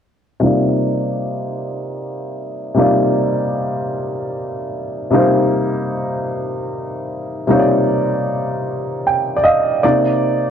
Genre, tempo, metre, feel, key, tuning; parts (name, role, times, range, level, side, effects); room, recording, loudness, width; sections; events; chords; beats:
R&B; 51 BPM (dotted quarters); 6/8; straight; C minor; A4 = 439 Hz
warm baby grand piano; solo; 0.4-10.5 s; C3 to G5; -16 LUFS; equal; low-pass filter
light reverb; worn, warbling old tape, cassette tape, warbly pitch drift; -16 LUFS; side -8 dB against mid
0.4-9.8 A section
filter sweep on grand piano 0.4-9.8; grand piano fill 8.7-9.8
0.4 Cm11; 9.8 Cm9
| 0.42 1.60 | 2.78 3.95 | 5.13 6.31 | 7.48 8.66 | 9.84